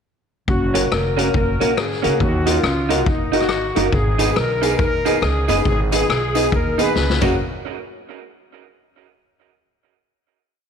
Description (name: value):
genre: ska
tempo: 139 BPM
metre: 4/4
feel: swing 62% on 8ths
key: F# major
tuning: A4 = 440 Hz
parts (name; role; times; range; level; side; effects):
- warm horn section; melody; 0.5-7.4 s; A#3 to B4; -23 LUFS; left 2 dB; none
- upright bass; bass; 0.5-7.4 s; E#1 to D#2; -22 LUFS; right 1 dB; transformer saturation
- street-band drum kit; drums; 0.5-7.3 s; crash cymbal, hi-hat, kick drum, rim click, snare drum; -22 LUFS; left 2 dB; none
- electric guitar through a small old amp; accompaniment; 0.7-7.3 s; C#4 to B4; -22 LUFS; right 10 dB; wide subtle chorus, tape echo
- warm upright piano; stabs; 0.7-7.3 s; A#3 to G#4; -25 LUFS; left 10 dB; none
- tambourine; percussion; 4.2-7.4 s; none; -37 LUFS; left 12 dB; none
room: moderate echo chamber reverb, RT60 1.9 s, small room ambience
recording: 1960s-style stereo with parts hard left and right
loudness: -16 LUFS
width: side -7 dB against mid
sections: 0.5-7.4 head; 7.4-9.1 final hit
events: drum fill 7.0-7.4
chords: 0.5 F#; 2.2 D#m; 3.9 G#m; 7.2 F#; 7.4 N.C.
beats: | 0.48 0.91 1.34 1.77 | 2.20 2.63 3.06 3.50 | 3.93 4.36 4.79 5.22 | 5.66 6.09 6.52 6.95